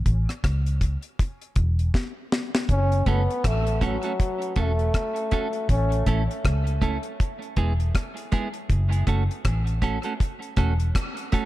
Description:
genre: dub reggae.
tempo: 80 BPM.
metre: 4/4.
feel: swing 59% on 16ths.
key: F# minor.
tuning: A4 = 440 Hz.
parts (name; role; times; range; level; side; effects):
vintage muted fingered electric bass; bass; 0.1-10.9 s; E1 to C#2; -23 LUFS; equal; none.
deep reggae drum kit; drums; 0.1-11.5 s; hi-hat, kick drum, rim click, snare drum; -25 LUFS; equal; none.
warm trombone; melody; 2.7-6.0 s; F#3 to C#4; -29 LUFS; left 1 dB; dub echo.
clean electric guitar; accompaniment; 3.1-11.5 s; G#3 to A4; -30 LUFS; right 5 dB; dub echo.
room: small room ambience.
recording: dark, warm production.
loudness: -22 LUFS.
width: side -16 dB against mid.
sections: 0.0-2.7 A section; 2.7-11.5 B section.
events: break 0.0-2.7; drum fill 1.9-2.7.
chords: 0.0 A; 1.2 N.C.; 2.7 F#m; 5.7 A; 7.2 E; 8.7 F#m.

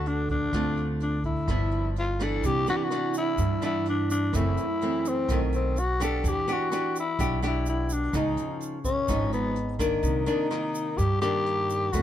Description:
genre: bossa nova.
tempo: 126 BPM.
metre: 4/4.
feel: straight.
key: unclear.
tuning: A4 = 439 Hz.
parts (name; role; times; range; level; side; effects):
growling tenor saxophone; melody; 0.0-12.0 s; B3 to A4; -28 LUFS; left 3 dB; none.
nylon-string guitar; accompaniment; 0.0-12.0 s; F#2 to A4; -29 LUFS; right 2 dB; none.
upright bass; bass; 0.0-12.0 s; F#1 to G2; -29 LUFS; right 1 dB; none.
jazz brush drum kit; drums; 0.1-12.0 s; hi-hat, kick drum, rim click; -34 LUFS; right 1 dB; none.
tube shaker; percussion; 2.4-12.0 s; none; -43 LUFS; right 4 dB; none.
room: little or no reverb.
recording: none.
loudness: -24 LUFS.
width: side -11 dB against mid.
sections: 0.0-2.4 A section; 2.4-12.0 B section.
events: none.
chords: 0.0 Gmaj9 (rootless); 0.5 Dm7; 1.5 G6; 2.4 Cmaj9; 4.3 F#m7b5; 5.3 B7b9; 6.2 Em7; 8.1 C#9; 10.0 Cm9.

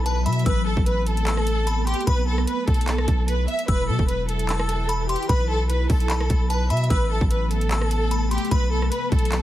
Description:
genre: hip hop, trap.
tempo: 149 BPM.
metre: 4/4.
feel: half-time.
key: unclear.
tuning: A4 = 438 Hz.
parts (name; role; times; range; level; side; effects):
warm studio violin section; melody; 0.0-9.4 s; G4 to E5; -27 LUFS; equal; none.
delicate synth tine bell; second line; 0.0-8.9 s; A5 to E6; -32 LUFS; left 2 dB; chorus, tape echo.
ethereal airy pad; sustained chords; 0.0-9.4 s; C3 to B4; -30 LUFS; equal; ensemble chorus, built-in reverb, phaser.
long sustained 808-style bass; bass; 0.0-9.4 s; E1 to B2; -23 LUFS; equal; none.
trap drum kit; drums; 0.1-9.4 s; handclaps, hi-hat, kick drum, rim click; -24 LUFS; equal; none.
room: little or no reverb.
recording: heavily compressed radio sound.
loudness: -20 LUFS.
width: side -13 dB against mid.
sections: 0.0-9.4 A section.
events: none.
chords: 0.5 Amadd9; 2.1 Bsus4; 3.7 Em; 5.3 Bsus4; 6.9 Amadd9; 8.5 Bsus4.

